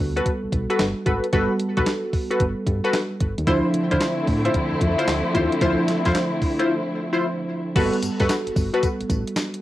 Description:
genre	R&B, new jack swing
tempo	112 BPM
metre	4/4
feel	swing 65% on 16ths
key	G major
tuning	A4 = 441 Hz
part	mellow FM electric piano	accompaniment	0.0-9.6 s	F3 to C5	-26 LUFS	right 2 dB	chorus, cassette tape
part	solid FM bass	bass	0.0-9.2 s	G1 to D3	-26 LUFS	equal	none
part	funky polysynth comp	stabs	0.2-8.9 s	E4 to C5	-24 LUFS	left 2 dB	chorus, cassette tape, tape echo
part	clean 12-bit digital drum machine	drums	0.2-9.6 s	crash cymbal, handclaps, hi-hat, kick drum, snare drum, tambourine	-25 LUFS	equal	cassette tape
part	warm studio string section	sustained chords	3.5-7.7 s	D3 to E4	-26 LUFS	left 1 dB	cassette tape
room	moderate studio reverb, RT60 0.6 s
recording	home recording on cassette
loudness	-20 LUFS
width	side -14 dB against mid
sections	0.0-7.8 A section; 7.8-9.6 B section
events	break 6.7-7.8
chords	0.0 Gmaj9; 3.5 Dm9; 7.8 Gmaj9

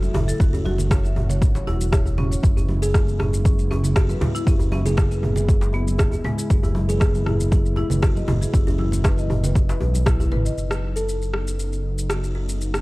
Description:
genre	afro house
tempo	118 BPM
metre	4/4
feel	straight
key	unclear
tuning	A4 = 440 Hz
part	buzzing kalimba	melody	0.0-12.5 s	C#4 to A4	-31 LUFS	left 1 dB	tape echo
part	warm analog pad	sustained chords	0.0-12.8 s	B2 to F#4	-33 LUFS	equal	chorus, sidechain pumping
part	marimba with medium mallets	arpeggios	0.0-10.6 s	G#3 to E5	-31 LUFS	left 1 dB	sidechain pumping, low-pass filter, tape echo
part	smooth synth bass	bass	0.0-12.8 s	E1 to B1	-23 LUFS	equal	sidechain pumping
part	deep house drum kit	drums	0.0-12.8 s	rim click, shaker, toms	-28 LUFS	equal	overdrive
part	congas	percussion	0.0-10.4 s	none	-30 LUFS	right 2 dB	none
part	djembe	percussion	0.1-10.4 s	none	-30 LUFS	equal	none
part	electronic kick drum	drums	0.4-10.2 s	none	-19 LUFS	equal	overdrive
room	small room ambience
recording	dry, gritty hardware recording, cassette tape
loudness	-18 LUFS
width	side -21 dB against mid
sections	0.0-10.6 A section; 10.6-12.8 B section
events	filter sweep on marimba 0.0-10.6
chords	0.0 F#m7; 2.4 C#m7/F#; 6.5 E/F#; 10.6 Badd9/F#

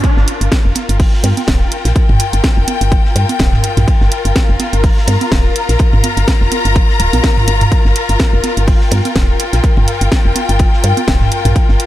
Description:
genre	minimal techno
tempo	125 BPM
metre	4/4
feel	swing 56% on 16ths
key	G minor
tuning	A4 = 442 Hz
part	electronic kick drum	drums	0.0-11.7 s	none	-12 LUFS	equal	overdrive
part	house drum kit	drums	0.0-11.9 s	hi-hat, snare drum	-20 LUFS	right 1 dB	overdrive
part	warm soul drum kit	drums	0.0-11.9 s	hi-hat, ride cymbal, snare drum	-30 LUFS	left 1 dB	high-pass filter on cymbals, high-pass filter on hats, high-pass filter on snare, high-pass filter on room
part	warm symphonic string section	texture	0.0-11.9 s	F4 to Bb5	-18 LUFS	left 4 dB	sidechain pumping
part	woody FM bass	bass	0.2-11.8 s	D1 to G2	-15 LUFS	equal	sidechain pumping
part	electronic congas and toms	percussion	0.8-11.5 s	none	-19 LUFS	right 3 dB	overdrive
room	little or no reverb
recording	none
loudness	-10 LUFS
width	side -14 dB against mid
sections	0.0-11.9 A section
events	drop 0.0-11.9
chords	0.0 Gm7

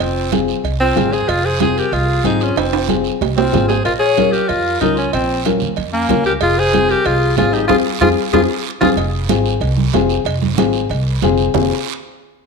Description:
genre	latin, cumbia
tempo	187 BPM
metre	4/4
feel	straight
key	F minor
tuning	A4 = 440 Hz
part	bright alto saxophone	melody	0.0-8.9 s	Bb3 to Ab4	-18 LUFS	right 2 dB	none
part	growling clarinet	second line	0.0-8.9 s	Db4 to Db5	-22 LUFS	left 8 dB	none
part	upright bass	bass	0.0-11.7 s	F1 to F2	-20 LUFS	right 1 dB	none
part	congas	percussion	0.0-11.6 s	none	-22 LUFS	right 12 dB	none
part	cowbell and timbales	percussion	0.0-11.6 s	none	-23 LUFS	right 13 dB	none
part	guiro	percussion	0.0-11.6 s	none	-30 LUFS	right 13 dB	none
part	dark upright piano	accompaniment	0.3-11.7 s	C4 to Bb4	-19 LUFS	left 11 dB	none
room	moderate echo chamber reverb, RT60 1.3 s, small room ambience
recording	1960s-style stereo with parts hard left and right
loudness	-13 LUFS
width	side -4 dB against mid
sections	0.0-9.0 A section; 9.0-11.5 B section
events	drum fill 2.6-3.9, 8.0-9.0; band accent 7.7-9.0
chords	0.0 Fm; 3.9 Bbm; 6.4 Fm

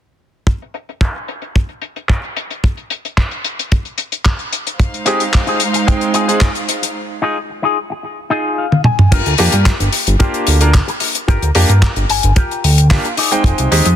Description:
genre	nu-disco, nu disco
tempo	111 BPM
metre	4/4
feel	straight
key	unclear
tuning	A4 = 442 Hz
part	damped 70s drum kit	drums	0.5-14.0 s	crash cymbal, handclaps, hi-hat, toms	-17 LUFS	left 1 dB	low-pass filter on hats, low-pass filter on toms, low-pass filter on cymbals, low-pass filter on snare, low-pass filter on room
part	kick drum	drums	0.5-13.6 s	none	-12 LUFS	equal	none
part	rich studio string section	sustained chords	4.8-6.9 s	Ab3 to F5	-20 LUFS	right 3 dB	sidechain pumping
part	bright baby grand piano	accompaniment	5.1-13.9 s	Ab3 to G5	-19 LUFS	right 2 dB	sidechain pumping, low-pass filter, digital delay
part	electric guitar with an envelope filter	riff	5.1-14.0 s	Eb4 to Ab5	-20 LUFS	left 4 dB	lush chorus, digital delay
part	fat analog bass	bass	9.1-14.0 s	F1 to G2	-13 LUFS	equal	sidechain pumping
room	small room ambience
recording	dense, heavily limited modern master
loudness	-13 LUFS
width	side -10 dB against mid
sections	0.5-9.1 A section; 9.1-14.0 B section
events	filter sweep on drum 0.5-9.1; clean electric guitar fill 8.0-9.1, 11.8-13.4; drum fill 8.7-9.1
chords	0.5 N.C.; 4.5 Fm7; 9.1 Gm7; 13.2 Fm7

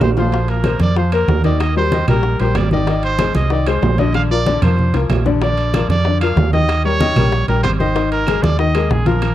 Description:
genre	latin, salsa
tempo	189 BPM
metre	4/4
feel	straight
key	unclear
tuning	A4 = 439 Hz
part	clear trumpet	melody	0.0-9.3 s	Ab4 to F5	-21 LUFS	right 3 dB	none
part	bright grand piano	accompaniment	0.0-9.3 s	D3 to F5	-20 LUFS	left 7 dB	none
part	hollow-body short-scale fingered electric bass	bass	0.0-9.3 s	Ab1 to F2	-17 LUFS	right 1 dB	none
part	bongos	percussion	0.0-9.3 s	none	-27 LUFS	left 7 dB	none
part	claves	percussion	0.0-9.3 s	none	-35 LUFS	right 4 dB	none
part	congas	percussion	0.0-9.3 s	none	-21 LUFS	equal	none
part	timbales	percussion	0.0-9.3 s	none	-26 LUFS	right 7 dB	none
room	small room ambience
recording	dry, close 1970s-style studio recording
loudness	-13 LUFS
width	side -13 dB against mid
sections	0.3-9.3 A section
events	drum fill 0.0-0.3, 4.1-5.4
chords	0.3 Bbsus2; 1.6 Eb; 2.9 Ab; 4.1 Bb; 6.7 Eb7; 8.0 Absus2

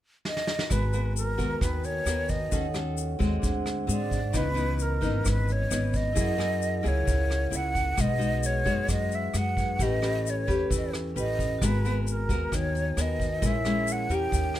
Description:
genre	bossa nova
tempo	132 BPM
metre	4/4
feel	straight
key	G# minor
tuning	A4 = 439 Hz
part	breathy concert flute	melody	0.3-14.6 s	A#4 to G5	-30 LUFS	equal	none
part	vintage brush drum kit	drums	0.3-14.6 s	hi-hat, kick drum, rim click, snare drum	-32 LUFS	equal	none
part	nylon-string guitar	accompaniment	0.7-14.6 s	G#2 to B4	-31 LUFS	left 3 dB	none
part	vibraphone with medium hard mallets	accompaniment	0.7-14.6 s	B3 to A#5	-36 LUFS	right 3 dB	none
part	upright bass	bass	0.7-14.6 s	G#1 to G#2	-29 LUFS	equal	none
part	tube shaker	percussion	0.7-14.6 s	none	-38 LUFS	left 10 dB	none
room	little or no reverb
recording	none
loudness	-25 LUFS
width	side -13 dB against mid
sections	0.7-14.6 A section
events	drum fill 0.2-0.7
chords	0.0 N.C.; 0.7 G#m9; 2.5 D#m7b5; 3.4 D7#11; 4.3 C#m9; 6.2 F#9; 8.0 B6; 9.8 A9; 11.6 G#m9; 13.4 A#m7b5

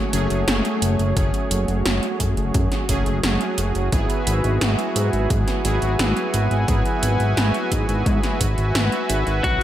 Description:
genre	synthwave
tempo	87 BPM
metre	4/4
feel	straight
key	unclear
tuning	A4 = 440 Hz
part	brassy analog pad	sustained chords	0.0-9.6 s	A3 to B5	-25 LUFS	equal	chorus, sidechain pumping
part	analog synth brass	stabs	0.0-9.6 s	F#3 to B4	-27 LUFS	right 2 dB	chorus, ping-pong delay
part	fat analog bass	bass	0.1-9.6 s	F#1 to G#2	-22 LUFS	equal	tube saturation
part	80s electronic pad drums	drums	0.1-9.6 s	hi-hat, snare drum	-25 LUFS	equal	none
part	electronic kick drum	drums	1.2-9.6 s	none	-23 LUFS	equal	none
part	lightly driven lead guitar	melody	9.4-9.6 s	F#4	-20 LUFS	left 3 dB	none
room	light reverb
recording	none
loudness	-18 LUFS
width	side -12 dB against mid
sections	0.0-9.6 A section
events	none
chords	0.0 F#madd9; 3.9 Eadd9/G#

